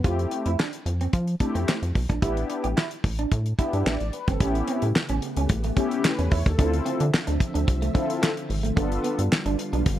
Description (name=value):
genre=early-eighties boogie funk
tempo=110 BPM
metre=4/4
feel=straight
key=unclear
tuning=A4 = 441 Hz
part: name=mellow synth brass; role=accompaniment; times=0.0-9.2 s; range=A3 to D5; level=-28 LUFS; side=left 2 dB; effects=chorus, phaser
part: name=electric guitar at the edge of break-up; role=riff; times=0.0-9.9 s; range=A3 to G4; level=-32 LUFS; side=right 5 dB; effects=lush chorus
part: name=rubbery square bass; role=bass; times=0.0-10.0 s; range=G1 to F3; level=-26 LUFS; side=equal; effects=none
part: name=damped 70s drum kit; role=drums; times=0.0-10.0 s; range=handclaps, hi-hat, kick drum, snare drum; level=-25 LUFS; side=equal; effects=none
part: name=soft string machine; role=sustained chords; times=4.8-10.0 s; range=C#3 to E5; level=-34 LUFS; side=equal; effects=ensemble chorus
room=small room reverb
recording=dark, warm production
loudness=-22 LUFS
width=side -12 dB against mid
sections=0.0-4.4 A section; 4.4-10.0 B section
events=none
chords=0.0 Fmaj7; 2.2 A7sus4; 4.4 A9; 6.6 Dm9; 8.8 G7